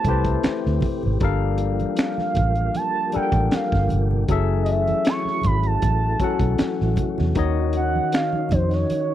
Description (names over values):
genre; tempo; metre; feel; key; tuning
R&B, neo-soul; 78 BPM; 4/4; swing 53% on 16ths; unclear; A4 = 440 Hz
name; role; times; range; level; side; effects
gliding portamento lead; melody; 0.0-9.1 s; C5 to C#6; -25 LUFS; right 3 dB; chorus
barky tine electric piano; accompaniment; 0.0-9.1 s; Eb3 to G5; -25 LUFS; left 10 dB; overdrive
tonewheel organ; sustained chords; 0.0-9.1 s; Eb3 to G4; -31 LUFS; right 5 dB; slow rotary speaker, overdrive, chorus vibrato
crunchy breakbeat drum kit; drums; 0.0-9.1 s; finger snaps, hi-hat, kick drum, snare drum; -24 LUFS; right 1 dB; none
congas; percussion; 0.0-9.1 s; none; -33 LUFS; right 7 dB; none
vintage muted fingered electric bass; bass; 0.1-8.8 s; F#1 to F2; -22 LUFS; right 1 dB; none
room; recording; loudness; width
little or no reverb; dry, close 1970s-style studio recording; -19 LUFS; side -12 dB against mid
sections
0.0-9.1 A section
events
none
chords
0.0 Am9; 1.2 Gm9; 4.3 F#m9; 7.4 Ebm9